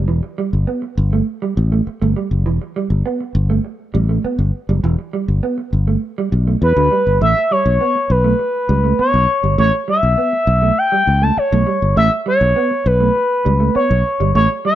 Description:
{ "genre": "funk", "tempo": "101 BPM", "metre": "4/4", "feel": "straight", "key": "unclear", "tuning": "A4 = 439 Hz", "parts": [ { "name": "mellow electric guitar", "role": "riff", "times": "0.0-14.8 s", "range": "E3 to B3", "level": "-22 LUFS", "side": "right 6 dB", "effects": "spring reverb" }, { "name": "fingered electric bass", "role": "bass", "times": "0.0-14.5 s", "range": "E1 to E2", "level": "-15 LUFS", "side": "left 1 dB", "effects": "none" }, { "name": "expressive synth lead", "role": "melody", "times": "6.6-14.8 s", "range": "B4 to A5", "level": "-15 LUFS", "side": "left 1 dB", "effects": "chorus" } ], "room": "light reverb, digital ambience", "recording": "none", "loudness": "-14 LUFS", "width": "side -12 dB against mid", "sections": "0.0-7.2 A section; 7.2-14.8 B section", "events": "none", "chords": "0.0 Em; 7.2 A9" }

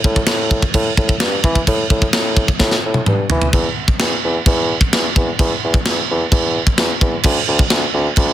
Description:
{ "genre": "heavy metal", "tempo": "129 BPM", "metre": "4/4", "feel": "straight", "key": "unclear", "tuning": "A4 = 440 Hz", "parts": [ { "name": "warm bassoon", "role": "bass", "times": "0.0-8.3 s", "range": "D2 to E3", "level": "-19 LUFS", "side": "equal", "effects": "none" }, { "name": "tight metal drum kit", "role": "drums", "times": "0.0-8.3 s", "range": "china cymbal, crash cymbal, kick drum, snare drum, toms", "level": "-15 LUFS", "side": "equal", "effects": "soft clipping on kick" } ], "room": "little or no reverb", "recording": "dense, heavily limited modern master", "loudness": "-14 LUFS", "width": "side -12 dB against mid", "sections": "0.0-3.5 A section; 3.5-8.3 B section", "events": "drum fill 2.6-3.5", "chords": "none" }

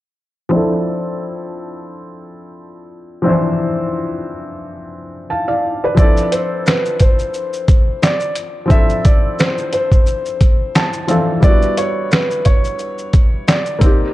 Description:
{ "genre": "lo-fi hip hop", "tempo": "88 BPM", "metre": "4/4", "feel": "swing 56% on 16ths", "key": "D dorian", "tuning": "A4 = 440 Hz", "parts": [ { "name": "felt-muted upright piano", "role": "accompaniment", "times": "0.5-14.1 s", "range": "E3 to A5", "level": "-20 LUFS", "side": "left 1 dB", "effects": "low-pass filter" }, { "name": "warm upright piano", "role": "melody", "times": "6.0-13.8 s", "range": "B4 to E5", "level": "-20 LUFS", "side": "equal", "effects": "low-pass filter, tape echo" }, { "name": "trip hop sampler-style drum kit", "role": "drums", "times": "6.0-14.0 s", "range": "handclaps, hi-hat, kick drum, shaker, snare drum", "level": "-13 LUFS", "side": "equal", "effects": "none" } ], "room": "moderate spring reverb, RT60 2.5 s", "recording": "dark, warm production", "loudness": "-13 LUFS", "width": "side -16 dB against mid", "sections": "0.5-6.0 A section; 6.0-14.1 B section", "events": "filter sweep on felt piano 0.5-6.0; felt piano fill 10.4-11.4", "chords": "0.5 Dm7; 11.4 Em7" }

